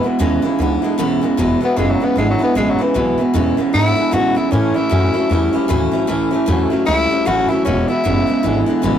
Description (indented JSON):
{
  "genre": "rockabilly",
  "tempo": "153 BPM",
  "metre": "4/4",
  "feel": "swing 60% on 8ths",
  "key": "E major",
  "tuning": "A4 = 440 Hz",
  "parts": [
    { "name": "raspy tenor saxophone", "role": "melody", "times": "0.0-8.6 s", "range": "E3 to F#4", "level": "-18 LUFS", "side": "left 2 dB", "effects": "none" },
    { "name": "picked steel-string acoustic guitar", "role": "accompaniment", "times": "0.0-9.0 s", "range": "E2 to E4", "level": "-19 LUFS", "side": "left 2 dB", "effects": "none" },
    { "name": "electric guitar through a small old amp", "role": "riff", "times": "0.0-9.0 s", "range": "E2 to G3", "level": "-18 LUFS", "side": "right 3 dB", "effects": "none" },
    { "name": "upright bass", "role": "bass", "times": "0.0-9.0 s", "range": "E1 to B2", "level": "-20 LUFS", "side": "equal", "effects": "none" }
  ],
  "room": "moderate booth ambience, RT60 0.2 s",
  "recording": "rough rehearsal-room recording, tube saturation",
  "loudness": "-14 LUFS",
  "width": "side -9 dB against mid",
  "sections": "0.0-9.0 A section",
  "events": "none",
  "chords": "0.0 E; 4.5 A; 7.7 E"
}